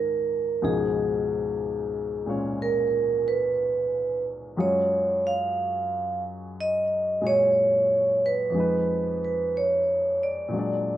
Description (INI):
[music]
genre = jazz ballad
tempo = 60 BPM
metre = 4/4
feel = swing 68% on 8ths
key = Db major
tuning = A4 = 440 Hz
[part]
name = vibraphone with medium hard mallets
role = melody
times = 0.0-11.0 s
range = Ab4 to F5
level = -23 LUFS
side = right 1 dB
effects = slapback echo
[part]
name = warm grand piano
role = accompaniment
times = 0.0-11.0 s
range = Db2 to D5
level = -30 LUFS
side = left 2 dB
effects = none
[sound]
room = little or no reverb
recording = recorded outdoors, with no room sound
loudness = -22 LUFS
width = side -12 dB against mid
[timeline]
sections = 0.0-11.0 A section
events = none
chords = 0.0 Dbmaj9; 0.6 Db13; 4.6 Gbmaj9; 8.5 Fm7b5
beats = | 0.62 1.61 2.60 3.59 | 4.58 5.57 6.56 7.55 | 8.54 9.53 10.53